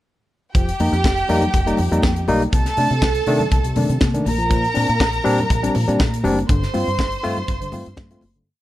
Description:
disco; 121 BPM; 4/4; straight; A4 = 435 Hz
clear studio string section; second line; 0.5-8.2 s; G4 to C6; -23 LUFS; right 2 dB
tight funk drum kit; drums; 0.5-8.5 s; hi-hat, kick drum, snare drum; -21 LUFS; equal
barky tine electric piano; accompaniment; 0.6-8.5 s; G2 to F4; -21 LUFS; left 2 dB; overdrive
deep dub fingered electric bass; bass; 0.6-8.4 s; F1 to C3; -23 LUFS; equal
congas; percussion; 0.8-8.3 s; -29 LUFS; left 2 dB
light reverb, small room ambience; -16 LUFS; side -15 dB against mid
0.5-8.5 pre-chorus
fade-out 6.5-8.5
0.5 F9sus4; 2.5 Cm69; 4.3 Bb69; 6.5 G7sus4

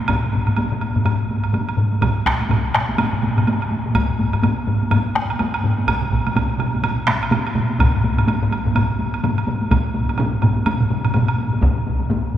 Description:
japanese traditional, taiko drum ensemble; 125 BPM; 4/4; swing 60% on 16ths
taiko ensemble; percussion; 0.0-12.2 s; -24 LUFS; equal
taiko ensemble; percussion; 0.1-12.4 s; -21 LUFS; left 2 dB
taiko ensemble; percussion; 0.1-11.8 s; -25 LUFS; equal
woodblock; percussion; 0.1-11.4 s; -26 LUFS; right 3 dB
taiko ensemble; percussion; 2.0-11.3 s; -24 LUFS; right 2 dB
wet cathedral reverb, RT60 6.2 s; recorded in a church or concert hall; -17 LUFS; side -11 dB against mid
0.0-11.6 A section

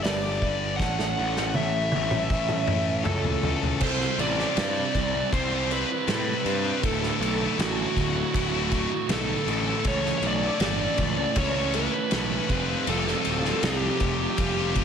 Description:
quiet-loud alternative rock; 79 BPM; 4/4; straight; A4 = 440 Hz
bluesy overdriven lead guitar; melody; 0.0-14.8 s; F#4 to F#5; -28 LUFS; equal; distortion, slapback echo, analog delay
fingerpicked steel-string acoustic guitar; arpeggios; 0.0-3.3 s; G3 to A4; -36 LUFS; right 5 dB; slapback echo
high-gain distorted guitar; riff; 0.0-14.8 s; D2 to C5; -30 LUFS; left 11 dB; distortion, slapback echo
fuzz picked electric bass; bass; 0.0-14.8 s; D1 to A2; -30 LUFS; equal; overdrive
loose indie drum kit; drums; 0.0-14.8 s; crash cymbal, hi-hat, kick drum, ride cymbal, snare drum, toms; -29 LUFS; equal
thick fuzz guitar; riff; 3.8-14.8 s; D2 to C5; -30 LUFS; right 10 dB; distortion
moderate lush hall reverb, RT60 2.5 s; big arena sound; -23 LUFS; side -7 dB against mid
0.0-3.8 A section; 3.8-14.8 B section
drum fill 0.8-3.8
0.0 G; 0.8 A6; 3.8 C6; 6.8 Dadd9; 9.9 Aadd9; 12.5 Fsus2

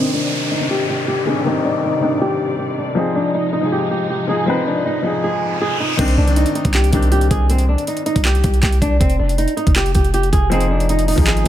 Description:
hip hop, trap; 159 BPM; 4/4; half-time; C minor; A4 = 439 Hz
flamenco guitar; melody; 0.0-11.5 s; C4 to Ab4; -20 LUFS; right 1 dB; low-pass filter, digital delay
felt-muted upright piano; accompaniment; 0.0-11.5 s; Eb3 to B4; -21 LUFS; left 4 dB; low-pass filter
rich studio string section; sustained chords; 0.0-6.0 s; C3 to D5; -27 LUFS; equal; low-pass filter
downlifter and riser; sound effects; 0.0-6.0 s; -26 LUFS; equal
long sustained 808-style bass; bass; 6.0-11.4 s; F1 to C2; -17 LUFS; equal
trap drum kit; drums; 6.0-11.5 s; crash cymbal, handclaps, hi-hat, kick drum; -18 LUFS; equal; overdrive
small room ambience; -15 LUFS; side -12 dB against mid
0.0-6.0 A section; 6.0-11.5 B section
filter sweep 0.0-6.0; riser 5.0-6.0
0.0 Cmadd9; 3.0 Fm7; 6.0 Cmadd9; 9.0 Fm7

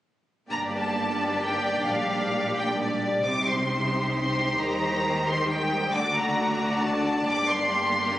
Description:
classical; 133 BPM; 3/4; rubato; G minor; A4 = 441 Hz
clear symphonic violin section; melody; 0.5-8.2 s; D5 to D6; -26 LUFS; left 1 dB
rich studio violin section; second line; 0.5-8.2 s; F#4 to D5; -30 LUFS; left 1 dB
rich symphonic viola section; accompaniment; 0.5-8.2 s; G3 to Eb4; -31 LUFS; equal
rich symphonic cello section; bass; 0.5-8.2 s; G2 to Eb3; -32 LUFS; right 1 dB
rich symphonic double bass section; bass; 0.5-8.2 s; G1 to Eb2; -35 LUFS; equal
moderate recital hall reverb, RT60 1.5 s; recorded on a phone in the room, club reverb, compression; -23 LUFS; side -14 dB against mid
0.5-8.2 A section
0.5 Gm; 1.9 Gm/Bb; 3.3 Cm; 4.6 Cm/Eb; 5.9 D; 7.3 Gm

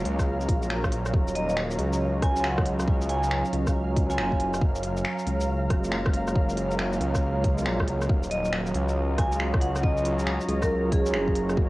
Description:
future garage; 138 BPM; 4/4; swing 64% on 16ths; Eb minor; A4 = 435 Hz
overdriven tine electric piano; accompaniment; 0.0-11.6 s; Gb3 to F4; -34 LUFS; equal; medium tremolo, sidechain pumping, cassette tape, analog delay
dark analog pad; sustained chords; 0.0-11.7 s; Gb3 to Bb5; -30 LUFS; right 1 dB; chorus, sidechain pumping, cassette tape
swelling detuned saw bass; bass; 0.0-11.7 s; Eb1 to Db2; -28 LUFS; equal; sidechain pumping
flickering grainy texture; texture; 0.0-11.7 s; F5; -41 LUFS; equal; built-in reverb, cassette tape
organic electronic drum kit; drums; 0.1-11.6 s; finger snaps, hi-hat, rim click, shaker; -33 LUFS; equal; cassette tape
electronic kick drum; drums; 0.2-11.7 s; -24 LUFS; equal; cassette tape
vibraphone with medium hard mallets; melody; 1.4-4.5, 8.3-11.5 s; Ab4 to Ab5; -30 LUFS; equal; analog delay
light reverb, digital ambience; home recording on cassette; -23 LUFS; side -19 dB against mid
0.0-11.7 A section
0.0 Gbmaj7; 1.1 Ebm7; 4.6 Gbmaj7; 8.1 Ebm7

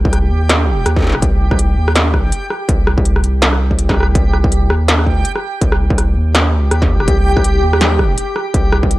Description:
half-time drum and bass; 164 BPM; 4/4; swing 58% on 16ths, half-time; C minor; A4 = 443 Hz
saturated sub bass; bass; 0.0-9.0 s; C2 to Eb2; -15 LUFS; equal
backwards swelling texture; texture; 0.0-9.0 s; G4; -22 LUFS; right 1 dB; built-in reverb
electronic kick drum; drums; 0.1-8.9 s; -16 LUFS; equal; distortion
industrial drum kit; drums; 0.1-9.0 s; hi-hat, rim click, snare drum; -16 LUFS; equal
little or no reverb; dry, gritty hardware recording; -11 LUFS; side -17 dB against mid
0.0-9.0 A section
0.0 C5

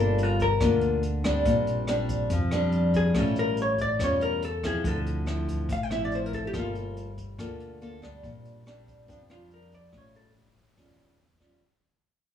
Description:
bossa nova; 142 BPM; 4/4; straight; A4 = 440 Hz
vintage hollow-body jazz guitar; melody; 0.0-6.7, 9.3-10.3 s; D4 to G5; -28 LUFS; left 2 dB
nylon-string guitar; accompaniment; 0.0-11.6 s; A2 to A4; -28 LUFS; left 1 dB
upright bass; bass; 0.0-11.6 s; G1 to F2; -30 LUFS; equal
jazz brush drum kit; drums; 0.2-11.5 s; hi-hat, kick drum, rim click; -34 LUFS; equal
light reverb; small room ambience; -24 LUFS; side -9 dB against mid
0.0-11.6 A section
fade-out 0.0-11.6; hollow-body jazz guitar solo 0.0-11.6
0.0 Gm9; 1.5 Bb69; 3.1 A7b13; 4.8 Dm9; 6.5 Gm9; 8.2 Bb69; 9.9 A7b13

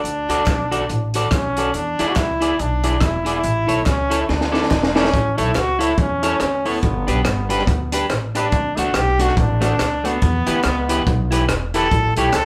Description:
ska; 142 BPM; 4/4; swing 59% on 8ths; D major; A4 = 440 Hz
brilliant trombone; melody; 0.0-12.4 s; B3 to A4; -24 LUFS; equal
upright bass; bass; 0.0-12.4 s; E1 to E2; -26 LUFS; equal
compact cocktail drum kit; drums; 0.0-12.4 s; hi-hat, kick drum, rim click, snare drum; -24 LUFS; equal
electric guitar at the edge of break-up; accompaniment; 0.3-12.3 s; A3 to D5; -25 LUFS; equal
group handclap; percussion; 0.5-12.4 s; -34 LUFS; equal
wet studio reverb, RT60 0.5 s; band playing live in one room; -19 LUFS; mono
0.0-5.1 A section; 5.1-12.4 B section
drum fill 4.3-5.1
0.0 D; 1.7 E7; 3.4 A; 4.3 Dsus2; 5.1 A; 6.8 G; 8.5 D; 10.2 Em; 11.9 A

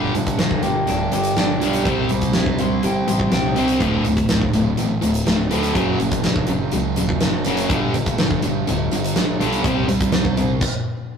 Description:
quiet-loud alternative rock; 123 BPM; 4/4; straight; A4 = 438 Hz
electric guitar through a small old amp; arpeggios; 0.0-3.8 s; G2 to C5; -24 LUFS; equal
distorted electric guitar; riff; 0.0-10.6 s; D2 to C4; -23 LUFS; left 4 dB; distortion
thick fuzz guitar; riff; 0.0-10.6 s; D2 to C4; -22 LUFS; right 4 dB; distortion
fuzz fingered electric bass; bass; 0.0-10.6 s; D1 to D2; -27 LUFS; left 1 dB; overdrive
big rock drum kit; drums; 0.1-10.7 s; crash cymbal, hi-hat, kick drum, snare drum; -22 LUFS; equal
moderate studio reverb, RT60 0.5 s; rough rehearsal-room recording, tube saturation; -17 LUFS; side -7 dB against mid
0.0-11.2 A section
stop 10.6-11.2
0.0 Gm; 1.9 C; 3.8 D5; 5.8 F#5; 7.7 G5; 9.6 C5; 10.6 N.C.

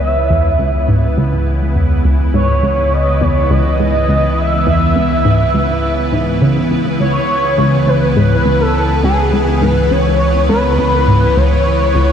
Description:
ambient, sequencer-driven space music; 103 BPM; 4/4; straight; C# minor; A4 = 439 Hz
expressive synth lead; melody; 0.0-12.1 s; G#4 to E5; -16 LUFS; equal; ensemble chorus, tape echo
evolving wavetable pad; sustained chords; 0.0-12.1 s; C#3 to B4; -17 LUFS; equal; ensemble chorus, built-in reverb
warm sub bass; bass; 0.0-12.1 s; C#2; -17 LUFS; equal
tight sequenced synth; riff; 0.3-12.1 s; C#2 to C#3; -16 LUFS; equal; chorus, tape echo
wet lush hall reverb, RT60 2.6 s; -11 LUFS; side -8 dB against mid
0.0-12.1 A section
0.0 C#m7

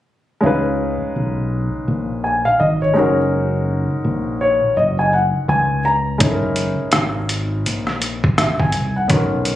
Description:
hip hop, jazz-hop; 83 BPM; 4/4; swing 60% on 16ths; F# major; A4 = 440 Hz
dark grand piano; accompaniment; 0.4-9.6 s; G#3 to A#5; -18 LUFS; left 1 dB
deep dub fingered electric bass; bass; 0.4-9.6 s; F#1 to C#2; -21 LUFS; equal
trip hop sampler-style drum kit; drums; 6.2-9.6 s; hi-hat, kick drum, rim click; -19 LUFS; equal
light reverb; recorded on a phone in the room, club reverb; -16 LUFS; side -13 dB against mid
0.4-9.6 A section
grand piano fill 4.0-6.2
0.4 C#9; 3.0 F#6; 6.2 F#13

